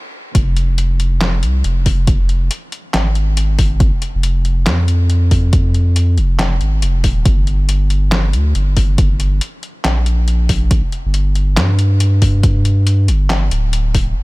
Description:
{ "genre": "deep dubstep", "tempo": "139 BPM", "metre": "4/4", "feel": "swing 60% on 16ths, half-time", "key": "F dorian", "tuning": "A4 = 440 Hz", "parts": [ { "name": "saturated sub bass", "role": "bass", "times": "0.3-14.2 s", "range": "D1 to G2", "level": "-14 LUFS", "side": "equal", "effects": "none" }, { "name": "electronic kick drum", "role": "drums", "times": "0.3-14.1 s", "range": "none", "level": "-15 LUFS", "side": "equal", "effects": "overdrive, high-pass filter on kick" }, { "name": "trip hop sampler-style drum kit", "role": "drums", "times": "0.3-14.1 s", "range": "handclaps, hi-hat, snare drum", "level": "-22 LUFS", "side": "left 1 dB", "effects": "none" } ], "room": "little or no reverb", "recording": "high-pass filter", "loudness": "-12 LUFS", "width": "side -22 dB against mid", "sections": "0.3-14.2 A section", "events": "stop 0.0-0.3; drop 0.3-14.2", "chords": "none" }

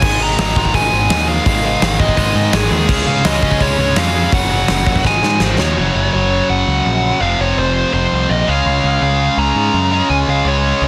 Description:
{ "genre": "punk rock", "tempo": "167 BPM", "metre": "4/4", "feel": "straight", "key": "Ab mixolydian", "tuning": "A4 = 440 Hz", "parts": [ { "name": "high-gain lead guitar", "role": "melody", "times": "0.0-10.9 s", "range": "Ab4 to Bb5", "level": "-20 LUFS", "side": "equal", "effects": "distortion" }, { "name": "tight distorted guitar", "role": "riff", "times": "0.0-10.9 s", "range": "F2 to Db4", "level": "-20 LUFS", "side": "equal", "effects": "distortion" }, { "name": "growling picked electric bass", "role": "bass", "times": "0.0-10.9 s", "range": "F1 to Ab2", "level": "-21 LUFS", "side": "equal", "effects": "overdrive" }, { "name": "big rock drum kit", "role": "drums", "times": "0.0-5.7 s", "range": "crash cymbal, hi-hat, kick drum, snare drum", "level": "-20 LUFS", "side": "equal", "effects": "soft clipping on snare" } ], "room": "light reverb", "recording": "dense, heavily limited modern master", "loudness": "-15 LUFS", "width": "mono", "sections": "0.0-5.8 A section; 5.8-10.9 B section", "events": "drum fill 5.0-5.8; half time 5.8-10.9", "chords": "0.0 Ab5; 2.9 Db; 4.3 Gb5; 5.0 Ab5; 5.8 Gb; 7.2 F5; 8.5 Db" }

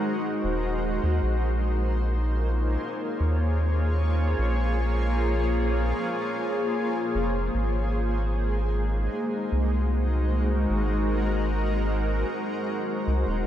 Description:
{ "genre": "ambient dub", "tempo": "76 BPM", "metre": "4/4", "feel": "straight", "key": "Bb minor", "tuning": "A4 = 440 Hz", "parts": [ { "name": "granular cloud pad", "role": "sustained chords", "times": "0.0-13.5 s", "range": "Ab3 to Db5", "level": "-27 LUFS", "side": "equal", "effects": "built-in reverb" }, { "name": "soft dub sub bass", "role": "bass", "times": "0.4-13.5 s", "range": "Eb1 to Eb2", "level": "-25 LUFS", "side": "equal", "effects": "none" } ], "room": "light reverb", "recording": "none", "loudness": "-23 LUFS", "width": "side -11 dB against mid", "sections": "0.0-13.5 A section", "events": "none", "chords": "0.0 Ab9; 1.2 Bbm9; 7.5 Ab9" }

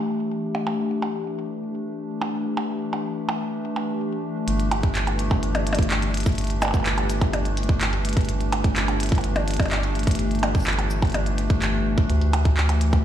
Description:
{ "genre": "IDM", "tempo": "126 BPM", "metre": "4/4", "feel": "straight", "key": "unclear", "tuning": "A4 = 440 Hz", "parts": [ { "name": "warbly tape-like pad", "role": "sustained chords", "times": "0.0-13.0 s", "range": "E3 to G4", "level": "-27 LUFS", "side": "left 2 dB", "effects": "chorus, built-in reverb" }, { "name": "glitchy drum kit", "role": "drums", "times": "0.5-13.0 s", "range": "handclaps, hi-hat, percussion blips, shaker", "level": "-27 LUFS", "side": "right 1 dB", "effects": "ping-pong delay" }, { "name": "round analog bass", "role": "bass", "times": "4.5-13.0 s", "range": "G1 to D2", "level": "-24 LUFS", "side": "equal", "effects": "none" }, { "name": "electronic kick drum", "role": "drums", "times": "4.8-13.0 s", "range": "none", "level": "-20 LUFS", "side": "equal", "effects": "none" } ], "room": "light reverb, digital ambience", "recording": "played on a big sound system in a bare room, large studio reverb", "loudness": "-21 LUFS", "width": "side -10 dB against mid", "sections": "0.0-4.5 A section; 4.5-13.0 B section", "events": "filter sweep on drum 0.0-4.5; filter sweep on ambient pad 0.0-4.5", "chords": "0.0 G5; 12.1 Dsus24" }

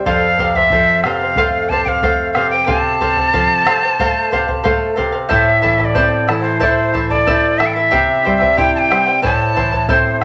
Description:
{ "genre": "andean folk, Andean ensemble", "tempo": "92 BPM", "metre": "4/4", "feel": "straight", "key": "unclear", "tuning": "A4 = 442 Hz", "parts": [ { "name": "charango", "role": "accompaniment", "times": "0.0-10.2 s", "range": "E4 to A5", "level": "-20 LUFS", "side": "equal", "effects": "none" }, { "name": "nylon-string guitar", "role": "accompaniment", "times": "0.0-10.2 s", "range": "F2 to C5", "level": "-22 LUFS", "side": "equal", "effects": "none" }, { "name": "breathy bright quena", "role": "melody", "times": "0.1-10.2 s", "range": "C5 to A5", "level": "-18 LUFS", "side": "equal", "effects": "none" }, { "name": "bombo", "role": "percussion", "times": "0.1-10.2 s", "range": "none", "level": "-26 LUFS", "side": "equal", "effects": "none" } ], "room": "moderate large studio reverb, RT60 0.8 s", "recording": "nothing above 8.0 kHz", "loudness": "-15 LUFS", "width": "mono", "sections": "0.0-10.2 A section", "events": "none", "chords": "0.1 F; 5.3 Am; 7.9 C; 9.2 Am" }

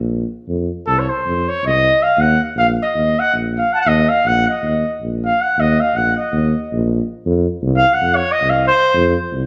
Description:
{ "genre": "balkan folk", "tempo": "320 BPM (eighths)", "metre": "9/8", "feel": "straight", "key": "Eb dorian sharp4", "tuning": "A4 = 440 Hz", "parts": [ { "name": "mellow tuba", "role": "bass", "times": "0.0-9.5 s", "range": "Bb1 to F2", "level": "-21 LUFS", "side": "equal", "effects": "none" }, { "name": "mellow trumpet", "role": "melody", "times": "0.9-9.2 s", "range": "A4 to A5", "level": "-18 LUFS", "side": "equal", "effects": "none" } ], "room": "wet stone room reverb, RT60 1.2 s", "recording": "band playing live in one room", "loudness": "-16 LUFS", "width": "mono", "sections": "0.0-9.5 A section", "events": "trumpet solo 0.0-9.5", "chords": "0.5 F5; 2.2 Eb5; 7.2 F5" }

